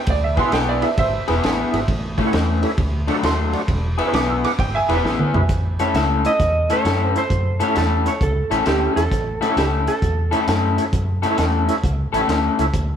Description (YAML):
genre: electric blues shuffle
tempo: 133 BPM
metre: 4/4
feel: swing 66% on 8ths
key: A major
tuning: A4 = 439 Hz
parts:
  - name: warm upright piano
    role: second line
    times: 0.0-5.5 s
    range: C5 to E6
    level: -24 LUFS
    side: right 4 dB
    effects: none
  - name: vintage muted fingered electric bass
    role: bass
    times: 0.1-13.0 s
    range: E1 to F#2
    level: -23 LUFS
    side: equal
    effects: none
  - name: crunchy breakbeat drum kit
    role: drums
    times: 0.1-12.9 s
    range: hi-hat, kick drum, ride cymbal, snare drum, toms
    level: -23 LUFS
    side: equal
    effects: none
  - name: tonewheel organ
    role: accompaniment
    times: 0.4-12.7 s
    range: E4 to F#5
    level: -27 LUFS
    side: right 5 dB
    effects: overdrive, chorus vibrato, slow rotary speaker
  - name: electric guitar through a small old amp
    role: riff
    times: 0.4-12.6 s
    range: A2 to A4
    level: -22 LUFS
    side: left 4 dB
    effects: spring reverb
  - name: clean lap steel guitar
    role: melody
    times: 5.8-10.4 s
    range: G4 to E5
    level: -23 LUFS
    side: right 3 dB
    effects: none
room: moderate stone room reverb, RT60 1.2 s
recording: band playing live in one room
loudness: -17 LUFS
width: side -8 dB against mid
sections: 0.0-5.5 A section; 5.5-13.0 B section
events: upright piano solo 0.0-5.5; drum fill 5.0-5.5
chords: 0.0 E; 1.9 A; 2.8 D; 3.7 E; 5.5 A